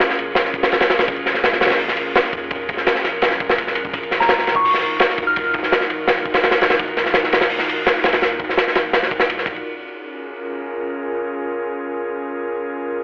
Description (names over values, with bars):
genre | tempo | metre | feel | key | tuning
drum and bass, jungle | 168 BPM | 4/4 | straight | Bb minor | A4 = 440 Hz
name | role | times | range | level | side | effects
airy breathy pad | sustained chords | 0.0-13.0 s | Db4 to Bb4 | -27 LUFS | equal | chorus
crunchy breakbeat drum kit | drums | 0.0-9.6 s | hi-hat, kick drum, ride cymbal, snare drum | -19 LUFS | equal | none
soft dub sub bass | bass | 0.2-9.6 s | F1 to Eb2 | -45 LUFS | equal | none
soft synth bell | melody | 4.2-5.8 s | Bb5 to F6 | -24 LUFS | equal | chorus, vintage 12-bit sampler grit, dub echo
room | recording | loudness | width
light reverb, studio reverb | dry, gritty hardware recording, cassette tape, telephone sound | -19 LUFS | mono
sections
0.0-9.6 A section; 9.6-13.0 B section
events
drop 0.0-9.6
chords
0.0 Bbm7; 3.9 Ebmadd9; 9.6 Bbm7